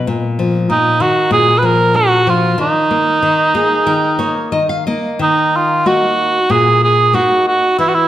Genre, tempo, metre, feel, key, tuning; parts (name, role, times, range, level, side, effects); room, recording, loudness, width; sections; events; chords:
fado-style ballad; 94 BPM; 4/4; rubato; Eb minor; A4 = 440 Hz
nylon-string guitar; accompaniment; 0.0-8.1 s; Bb2 to F5; -16 LUFS; left 3 dB
mellow cor anglais; melody; 0.7-8.1 s; Eb4 to Cb5; -12 LUFS; right 2 dB
wet recital hall reverb, RT60 1.4 s; -11 LUFS; side -12 dB against mid
0.0-5.2 A section; 5.2-8.1 B section
nylon-string guitar fill 3.2-5.2
0.1 Bbsus4; 1.3 Bb; 2.6 Eb5; 5.2 Ebm